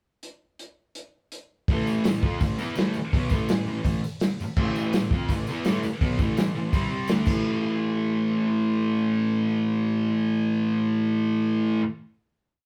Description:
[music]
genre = garage rock duo or trio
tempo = 167 BPM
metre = 4/4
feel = straight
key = A minor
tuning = A4 = 440 Hz
[part]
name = vintage drum kit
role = drums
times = 0.2-7.3 s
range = crash cymbal, hi-hat, kick drum, snare drum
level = -28 LUFS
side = equal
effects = none
[part]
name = thick fuzz guitar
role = riff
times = 1.7-11.8 s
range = A2 to F4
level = -26 LUFS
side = equal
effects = distortion
[part]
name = tambourine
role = percussion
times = 1.9-7.6 s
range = none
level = -52 LUFS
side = equal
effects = none
[sound]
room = light reverb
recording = band playing live in one room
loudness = -25 LUFS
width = mono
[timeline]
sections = 0.2-1.7 pickup bar; 1.7-7.4 riff; 7.4-10.3 final hit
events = none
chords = 0.2 N.C.; 1.7 A5; 6.7 C5; 7.1 D5; 7.3 A5

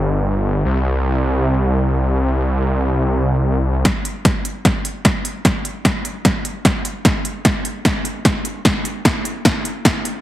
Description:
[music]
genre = future bass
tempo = 150 BPM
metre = 4/4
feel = swing 55% on 16ths, half-time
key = unclear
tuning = A4 = 442 Hz
[part]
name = wide detuned saw bass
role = bass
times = 0.0-3.8 s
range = G1 to C2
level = -16 LUFS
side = equal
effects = chorus, sidechain pumping
[part]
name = big-room dance drum kit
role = drums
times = 3.9-10.1 s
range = hi-hat, snare drum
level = -18 LUFS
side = equal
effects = overdrive
[part]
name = electronic kick drum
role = drums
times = 3.9-9.9 s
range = none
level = -19 LUFS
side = equal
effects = overdrive
[sound]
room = light reverb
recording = heavily compressed radio sound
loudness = -16 LUFS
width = side -13 dB against mid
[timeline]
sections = 0.0-3.9 A section; 3.9-10.2 B section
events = build-up 3.9-10.2; drum fill 3.9-10.2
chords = none

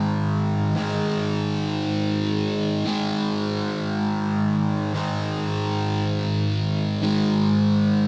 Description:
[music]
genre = rock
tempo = free time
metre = none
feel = none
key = unclear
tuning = A4 = 440 Hz
[part]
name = fuzz guitar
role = solo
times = 0.0-8.1 s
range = G#2 to G#3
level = -23 LUFS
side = equal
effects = distortion, phaser
[sound]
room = moderate large studio reverb, RT60 1.2 s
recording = band playing live in one room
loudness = -23 LUFS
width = mono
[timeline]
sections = 0.0-8.1 A section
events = none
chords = 0.0 G#5

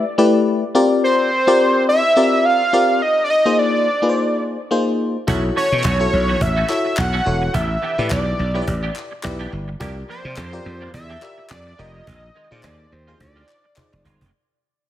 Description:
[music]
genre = early-eighties boogie funk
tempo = 106 BPM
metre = 4/4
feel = swing 56% on 16ths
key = unclear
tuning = A4 = 440 Hz
[part]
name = FM electric piano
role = accompaniment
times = 0.0-14.2 s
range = A3 to D5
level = -19 LUFS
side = left 2 dB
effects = chorus
[part]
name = fat analog lead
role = melody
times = 1.0-14.0 s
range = C5 to F#5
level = -18 LUFS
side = right 1 dB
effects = tape echo
[part]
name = semi-hollow electric guitar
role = riff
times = 5.3-14.3 s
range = D#3 to G4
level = -30 LUFS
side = right 4 dB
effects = ensemble chorus
[part]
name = slap bass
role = bass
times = 5.3-14.3 s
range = E1 to C3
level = -22 LUFS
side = right 1 dB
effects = none
[part]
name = cajon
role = drums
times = 5.3-14.3 s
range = none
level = -27 LUFS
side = equal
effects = none
[part]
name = group handclap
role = percussion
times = 5.8-13.9 s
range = none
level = -32 LUFS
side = left 2 dB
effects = none
[sound]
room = moderate plate reverb, RT60 1.6 s, small room reverb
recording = dreamy mix soaked in reverb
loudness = -15 LUFS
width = side -12 dB against mid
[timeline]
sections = 0.0-14.3 A section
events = fade-out 0.0-14.3; drum fill 13.8-14.3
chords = 0.0 A9sus4; 0.8 C9sus4; 3.0 A#9sus4; 5.3 B9sus4; 7.5 A9sus4; 9.8 C9sus4; 12.1 A#9sus4

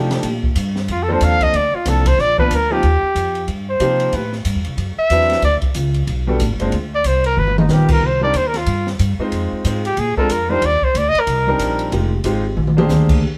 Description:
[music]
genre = jazz, small-group swing and bop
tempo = 185 BPM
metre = 4/4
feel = swing 61% on 8ths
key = Eb major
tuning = A4 = 440 Hz
[part]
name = warm concert grand piano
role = accompaniment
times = 0.0-13.2 s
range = F3 to C5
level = -24 LUFS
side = equal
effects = none
[part]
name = upright bass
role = bass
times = 0.0-13.2 s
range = F1 to C3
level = -22 LUFS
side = equal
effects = none
[part]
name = open jazz drum kit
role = drums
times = 0.1-13.1 s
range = crash cymbal, hi-hat, kick drum, ride cymbal, snare drum, toms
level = -24 LUFS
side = equal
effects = none
[part]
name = mellow trumpet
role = melody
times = 0.9-12.0 s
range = D#4 to F5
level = -20 LUFS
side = equal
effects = none
[sound]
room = light reverb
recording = band playing live in one room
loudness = -17 LUFS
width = mono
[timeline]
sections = 0.0-2.8 A section; 2.8-13.2 A section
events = trumpet solo 0.0-13.2; drum fill 7.4-7.7, 12.6-12.9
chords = 0.2 Bbmaj9; 2.2 Bb; 2.8 Eb69; 4.1 Am7; 4.8 D13; 5.4 Gmaj9; 6.7 Bbadd9 (rootless); 7.4 G7alt; 8.0 Cm; 9.3 Fm7; 10.0 Bb9; 10.6 Cmadd9; 11.3 Cm9; 11.9 Fm11; 12.6 Bb13

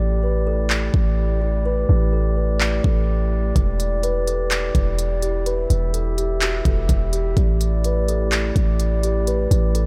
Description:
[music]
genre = hip hop, atmospheric cloud-rap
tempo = 126 BPM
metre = 4/4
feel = half-time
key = unclear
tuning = A4 = 439 Hz
[part]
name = kalimba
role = melody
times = 0.0-9.9 s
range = F#4 to D5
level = -30 LUFS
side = equal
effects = analog delay
[part]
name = glass harmonica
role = sustained chords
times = 0.0-9.9 s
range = A3 to E5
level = -29 LUFS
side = equal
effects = sidechain pumping
[part]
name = warm 808-style bass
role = bass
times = 0.0-9.9 s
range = E1 to A1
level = -22 LUFS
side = equal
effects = none
[part]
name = trap drum kit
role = drums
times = 0.7-9.9 s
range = handclaps, hi-hat, kick drum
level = -25 LUFS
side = equal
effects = overdrive
[sound]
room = light reverb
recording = none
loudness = -20 LUFS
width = mono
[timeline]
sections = 0.0-9.9 A section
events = break 0.0-3.6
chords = 0.0 A7sus4; 3.6 Em7; 7.4 A7sus4

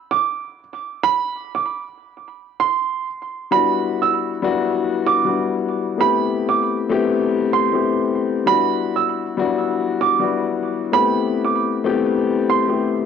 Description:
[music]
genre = hip hop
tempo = 97 BPM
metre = 4/4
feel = swing 62% on 16ths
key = E minor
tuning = A4 = 436 Hz
[part]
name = warm upright piano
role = melody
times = 0.1-13.0 s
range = B5 to E6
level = -20 LUFS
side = right 9 dB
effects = high-pass filter, low-pass filter, cassette tape, analog delay
[part]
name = dark baby grand piano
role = accompaniment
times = 3.5-13.1 s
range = G3 to G4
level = -19 LUFS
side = left 6 dB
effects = cassette tape, high-pass filter, low-pass filter
[sound]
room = moderate spring reverb, RT60 2.0 s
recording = home recording on cassette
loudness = -17 LUFS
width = side -7 dB against mid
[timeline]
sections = 0.0-13.1 A section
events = break 0.0-3.5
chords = 0.0 N.C.; 3.5 Em9; 6.0 Am9; 8.5 Em9; 10.9 Am9

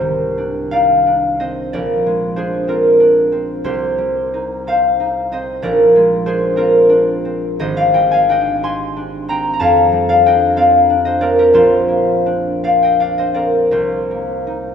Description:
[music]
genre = classical, solo harp piece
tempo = 52-65 BPM (dotted quarters)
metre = 6/8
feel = rubato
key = unclear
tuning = A4 = 440 Hz
[part]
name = concert harp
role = solo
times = 0.0-14.7 s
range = Ab1 to C6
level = -12 LUFS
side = left 1 dB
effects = none
[sound]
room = wet church reverb, RT60 2.9 s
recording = none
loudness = -12 LUFS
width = side -8 dB against mid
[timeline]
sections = 0.0-14.7 A section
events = none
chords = 0.0 Cmadd9; 1.7 Bb9; 3.6 Cm7; 5.6 Bb9; 7.6 Abmaj7#11; 9.6 F69; 11.5 Bbadd9; 13.7 Cm7

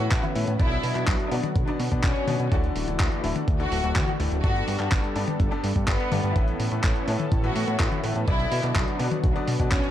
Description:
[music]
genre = italo disco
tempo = 125 BPM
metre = 4/4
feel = straight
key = unclear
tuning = A4 = 443 Hz
[part]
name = clear studio violin section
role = melody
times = 0.0-9.9 s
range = B3 to F#4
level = -31 LUFS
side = left 1 dB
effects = digital delay
[part]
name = lush unison pad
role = sustained chords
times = 0.0-9.9 s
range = D3 to A4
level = -32 LUFS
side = right 1 dB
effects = chorus
[part]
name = bright concert grand piano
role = stabs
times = 0.0-9.9 s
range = G2 to D5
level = -33 LUFS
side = left 6 dB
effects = none
[part]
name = fat analog bass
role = bass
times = 0.0-9.8 s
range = D1 to B2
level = -28 LUFS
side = equal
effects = none
[part]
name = dusty soul sampler-style drum kit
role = drums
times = 0.1-9.9 s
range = handclaps, hi-hat, toms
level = -31 LUFS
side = left 2 dB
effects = overdrive, small room ambience
[part]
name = electronic kick drum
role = drums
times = 0.1-9.8 s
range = none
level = -25 LUFS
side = equal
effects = overdrive, small room ambience
[sound]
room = light reverb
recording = dark, warm production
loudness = -22 LUFS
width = side -11 dB against mid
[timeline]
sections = 0.0-9.9 A section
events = none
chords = 0.0 Aadd9; 0.6 Bm; 2.5 Dadd9; 4.4 Gadd9; 6.4 Aadd9; 8.3 Bm

